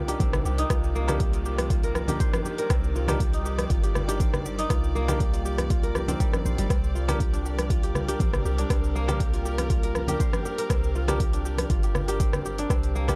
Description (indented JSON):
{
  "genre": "afro house",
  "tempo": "120 BPM",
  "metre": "4/4",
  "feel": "straight",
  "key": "C minor",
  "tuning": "A4 = 440 Hz",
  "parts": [
    { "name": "rich symphonic string section", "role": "sustained chords", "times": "0.0-13.2 s", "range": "C3 to D5", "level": "-40 LUFS", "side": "equal", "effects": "sidechain pumping" },
    { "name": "kora", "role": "arpeggios", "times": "0.0-13.2 s", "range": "G3 to C5", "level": "-34 LUFS", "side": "equal", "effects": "sidechain pumping, analog delay" },
    { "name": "warm 808-style bass", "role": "bass", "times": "0.0-13.2 s", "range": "G1 to C2", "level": "-31 LUFS", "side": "equal", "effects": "sidechain pumping" },
    { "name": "bell-like tine electric piano", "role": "stabs", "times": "0.1-13.2 s", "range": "D4 to Bb4", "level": "-38 LUFS", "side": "equal", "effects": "sidechain pumping, analog delay" },
    { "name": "deep house drum kit", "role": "drums", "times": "0.1-13.2 s", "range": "hi-hat, rim click, shaker", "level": "-34 LUFS", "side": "equal", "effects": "overdrive" },
    { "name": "electronic kick drum", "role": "drums", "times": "0.2-13.2 s", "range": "none", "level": "-28 LUFS", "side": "equal", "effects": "overdrive" },
    { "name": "congas", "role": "percussion", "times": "0.2-13.2 s", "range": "none", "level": "-35 LUFS", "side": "equal", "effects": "none" }
  ],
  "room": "little or no reverb",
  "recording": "dry, gritty hardware recording",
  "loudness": "-25 LUFS",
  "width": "mono",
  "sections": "0.0-13.2 A section",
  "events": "none",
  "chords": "0.0 Cm9; 6.7 Gm",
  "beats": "0.20 | 0.70 1.20 1.70 2.20 | 2.70 3.20 3.70 4.20 | 4.70 5.20 5.70 6.20 | 6.70 7.20 7.70 8.20 | 8.70 9.20 9.70 10.20 | 10.70 11.20 11.70 12.20 | 12.70"
}